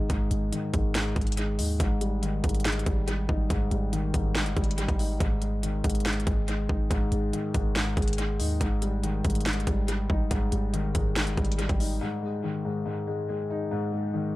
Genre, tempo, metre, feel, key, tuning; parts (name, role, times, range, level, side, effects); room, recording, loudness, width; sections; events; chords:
hip hop, trap; 141 BPM; 4/4; half-time; A4 = 439 Hz
dark concert grand piano; accompaniment; 0.0-14.4 s; G#2 to D#4; -29 LUFS; left 2 dB; low-pass filter, dub echo
clean 808-style bass; bass; 0.0-12.0 s; G1 to D#2; -29 LUFS; equal
trap drum kit; drums; 0.1-11.9 s; handclaps, hi-hat, kick drum, snare drum; -30 LUFS; equal; dub echo
light reverb, digital ambience; echo-heavy mix; -25 LUFS; side -18 dB against mid
0.0-12.0 A section; 12.0-14.4 B section
filter sweep on grand piano 0.0-5.2
0.0 G#5; 1.8 D#/G#; 5.2 G#5; 8.6 D#/G#; 12.0 G#5